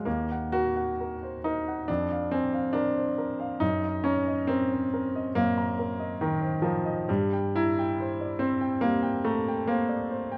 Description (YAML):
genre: classical, romantic character piece for solo piano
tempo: 60-72 BPM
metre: 4/4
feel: rubato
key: unclear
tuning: A4 = 443 Hz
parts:
  - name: warm baby grand piano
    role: solo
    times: 0.0-10.4 s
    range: Eb2 to Bb5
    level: -28 LUFS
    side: equal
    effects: none
room: light reverb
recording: close, detailed microphones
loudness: -28 LUFS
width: mono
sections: 0.0-10.4 A section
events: none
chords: 0.1 Ebm; 1.9 Bb7/F; 3.6 Ebm/Gb; 7.1 C7/G